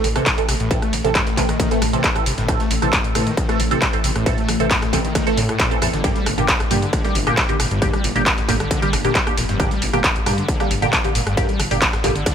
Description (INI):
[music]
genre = driving peak-time techno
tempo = 135 BPM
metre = 4/4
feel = straight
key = A minor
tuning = A4 = 442 Hz
[part]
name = screaming distorted acid line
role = riff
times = 0.0-12.3 s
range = G1 to A3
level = -26 LUFS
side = left 1 dB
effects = distortion, ensemble chorus, cassette tape, sidechain pumping, dub echo
[part]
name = filtered dub chord stab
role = stabs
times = 0.0-12.1 s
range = D3 to A4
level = -23 LUFS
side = right 3 dB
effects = phaser, analog chorus, sidechain pumping, dub echo
[part]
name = dark detuned saw bass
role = bass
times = 0.0-12.2 s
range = F1 to A2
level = -25 LUFS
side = equal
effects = sidechain pumping
[part]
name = deep dark ambient pad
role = drone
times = 0.5-12.3 s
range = A2 to A3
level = -29 LUFS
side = left 4 dB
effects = chorus, built-in reverb, sidechain pumping
[part]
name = dusty soul sampler-style drum kit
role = drums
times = 0.0-12.3 s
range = ride cymbal, snare drum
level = -32 LUFS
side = right 1 dB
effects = none
[part]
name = techno drum kit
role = drums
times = 0.0-12.3 s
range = handclaps, hi-hat, rim click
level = -22 LUFS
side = equal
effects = sidechain pumping on hats, sidechain pumping on cymbals
[part]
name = electronic kick drum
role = drums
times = 0.3-12.3 s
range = none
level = -22 LUFS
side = equal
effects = distortion
[sound]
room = light reverb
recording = none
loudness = -16 LUFS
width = side -8 dB against mid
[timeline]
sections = 0.0-12.3 A section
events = none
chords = 0.0 Am; 6.0 Gm